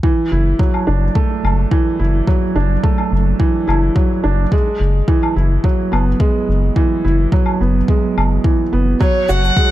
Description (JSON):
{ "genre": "piano and strings electronica", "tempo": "107 BPM", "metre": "4/4", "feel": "straight", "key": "unclear", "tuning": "A4 = 440 Hz", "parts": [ { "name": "felt-muted upright piano", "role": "riff", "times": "0.0-9.7 s", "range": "E3 to F#4", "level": "-18 LUFS", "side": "right 2 dB", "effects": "digital delay" }, { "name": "electronic kick drum", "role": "drums", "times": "0.0-9.7 s", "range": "none", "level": "-15 LUFS", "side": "equal", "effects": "none" }, { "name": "round analog bass", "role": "bass", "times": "0.3-9.5 s", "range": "F#1", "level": "-15 LUFS", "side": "equal", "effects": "sidechain pumping" }, { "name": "woodblock and shaker", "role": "drums", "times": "0.7-9.7 s", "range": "none", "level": "-24 LUFS", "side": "equal", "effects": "none" }, { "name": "dark violin", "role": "melody", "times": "9.0-9.7 s", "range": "C#5 to F#5", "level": "-16 LUFS", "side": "equal", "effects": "none" }, { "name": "granular cloud pad", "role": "sustained chords", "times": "9.5-9.7 s", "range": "F#4 to A5", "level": "-32 LUFS", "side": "right 3 dB", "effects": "none" } ], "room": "small room ambience", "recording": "none", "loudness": "-13 LUFS", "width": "side -14 dB against mid", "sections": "0.0-9.7 A section", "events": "none", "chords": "0.0 Dadd9/F#; 4.5 Eadd9/F#; 9.0 F#madd9" }